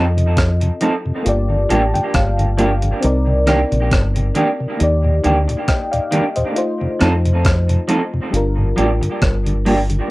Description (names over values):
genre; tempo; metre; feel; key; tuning
lovers rock reggae; 68 BPM; 4/4; swing 55% on 16ths; unclear; A4 = 439 Hz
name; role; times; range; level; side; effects
mellow FM electric piano; accompaniment; 0.0-10.1 s; G3 to A5; -22 LUFS; left 2 dB; chorus, cassette tape, plate reverb
electric guitar through a small old amp; stabs; 0.0-9.8 s; Eb3 to A4; -20 LUFS; right 2 dB; cassette tape, tape echo
deep dub fingered electric bass; bass; 0.0-10.0 s; G1 to F2; -17 LUFS; equal; none
mellow tonewheel organ; accompaniment; 0.2-10.0 s; Eb2 to F4; -21 LUFS; equal; chorus vibrato, stopped rotary speaker, cassette tape
gated 80s digital drum machine; drums; 0.2-10.1 s; hi-hat, kick drum, rim click; -20 LUFS; equal; cassette tape
room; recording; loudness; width
moderate studio ambience, RT60 0.5 s; home recording on cassette; -14 LUFS; side -20 dB against mid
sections
0.0-10.1 A section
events
FM electric piano fill 1.3-3.0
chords
0.0 F7; 1.3 Gm7; 3.0 Cm9; 4.8 Ebmaj7; 6.6 F7; 8.3 Gm7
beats
0.37 1.26 2.14 | 3.03 3.91 4.80 5.68 | 6.57 7.45 8.34 9.22